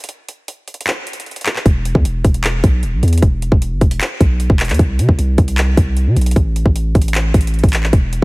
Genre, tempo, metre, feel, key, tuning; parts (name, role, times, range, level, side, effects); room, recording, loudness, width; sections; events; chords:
hip hop, trap; 153 BPM; 4/4; half-time; A4 = 440 Hz
trap drum kit; drums; 0.0-8.2 s; handclaps, hi-hat, kick drum; -14 LUFS; equal
long sustained 808-style bass; bass; 1.7-8.2 s; D#1 to C3; -16 LUFS; equal
little or no reverb; heavily compressed radio sound, multiband compression; -12 LUFS; side -25 dB against mid
0.0-8.2 A section
break 0.0-1.7